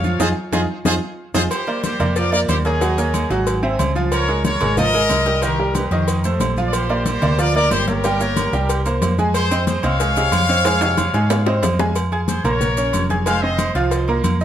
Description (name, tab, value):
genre	latin, salsa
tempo	184 BPM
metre	4/4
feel	straight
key	F minor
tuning	A4 = 443 Hz
part	brilliant trumpet section	melody	0.0-13.8 s	Eb4 to F5	-22 LUFS	left 1 dB	tape echo
part	bright concert grand piano	accompaniment	0.0-14.4 s	C3 to Ab6	-21 LUFS	right 2 dB	none
part	hollow-body short-scale fingered electric bass	bass	0.0-14.4 s	F1 to Ab2	-21 LUFS	equal	none
part	congas	percussion	0.0-14.4 s	none	-26 LUFS	left 3 dB	none
part	maracas	percussion	0.0-14.4 s	none	-35 LUFS	left 6 dB	none
part	bongos and cowbell	percussion	0.2-14.4 s	none	-29 LUFS	left 5 dB	none
part	timbales and agogo bells	percussion	0.2-14.4 s	none	-27 LUFS	right 5 dB	none
room	moderate studio reverb, RT60 0.8 s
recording	none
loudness	-16 LUFS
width	side -10 dB against mid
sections	0.0-1.5 A section; 1.5-12.0 B section; 12.0-14.4 C section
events	band accent 0.2-1.5; drum fill 0.7-1.5, 10.7-12.0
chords	0.0 Fm7; 1.5 Bb69; 2.8 Ebm7; 3.5 Abaug7; 4.1 Db69; 5.4 Cm7; 6.1 F7; 6.7 Bb69; 8.0 Gdim; 8.7 C5; 9.3 Fm7; 12.0 Fm; 12.6 Bbm; 13.3 Fm7; 13.9 C7sus4